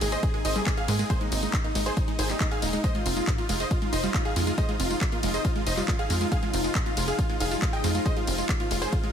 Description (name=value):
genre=uplifting trance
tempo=138 BPM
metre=4/4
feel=straight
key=unclear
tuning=A4 = 441 Hz
part: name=big supersaw lead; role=melody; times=0.0-9.1 s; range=Eb4 to G5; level=-31 LUFS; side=equal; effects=sidechain pumping, dub echo
part: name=warm baby grand piano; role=second line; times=0.0-9.1 s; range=Eb4 to G5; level=-37 LUFS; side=left 1 dB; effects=sidechain pumping, dub echo
part: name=shimmering ambient pad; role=sustained chords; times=0.0-9.1 s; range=C3 to Eb4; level=-34 LUFS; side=left 2 dB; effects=chorus, built-in reverb, sidechain pumping
part: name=wide unison pluck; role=arpeggios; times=0.0-9.1 s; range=Ab2 to Ab4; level=-33 LUFS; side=right 4 dB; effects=cassette tape, sidechain pumping, dub echo
part: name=tight sequencer bass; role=bass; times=0.0-8.9 s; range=Eb1 to Ab2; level=-30 LUFS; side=equal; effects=sidechain pumping
part: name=house drum kit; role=drums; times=0.0-9.1 s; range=handclaps, hi-hat, ride cymbal, tambourine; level=-32 LUFS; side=left 1 dB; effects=none
part: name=electronic kick drum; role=drums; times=0.2-9.0 s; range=none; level=-27 LUFS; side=equal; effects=none
room=digital ambience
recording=none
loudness=-24 LUFS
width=side -8 dB against mid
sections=0.0-9.1 A section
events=none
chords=0.0 Abadd9; 2.8 Fm7